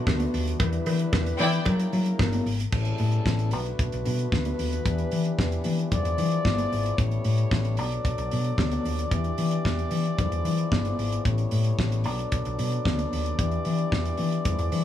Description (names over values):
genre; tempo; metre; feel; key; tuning
disco; 113 BPM; 4/4; straight; unclear; A4 = 441 Hz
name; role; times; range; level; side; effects
clear French horn section; sustained chords; 0.0-14.8 s; C#3 to D5; -31 LUFS; left 1 dB; none
hollow-body short-scale fingered electric bass; bass; 0.1-14.8 s; G1 to F#3; -26 LUFS; left 1 dB; none
damped 70s drum kit; drums; 0.1-14.8 s; crash cymbal, hi-hat, kick drum, snare drum; -29 LUFS; equal; none
congas; percussion; 0.1-14.8 s; none; -34 LUFS; left 3 dB; none
cowbell; percussion; 0.1-2.3 s; none; -37 LUFS; right 4 dB; none
warm studio string section; second line; 1.4-1.6 s; E4 to G5; -28 LUFS; left 1 dB; none
room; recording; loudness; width
little or no reverb; none; -23 LUFS; side -11 dB against mid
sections
0.0-2.7 A section; 2.7-14.8 B section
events
none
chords
0.0 Bm7; 0.6 Em7; 1.7 F#7; 2.7 A9; 3.5 Bm7; 4.9 Em7; 5.9 E7b9; 7.0 A9; 7.8 Bm7; 9.1 Em7; 10.2 E7b9; 11.2 A9; 12.1 Bm7; 13.4 Em7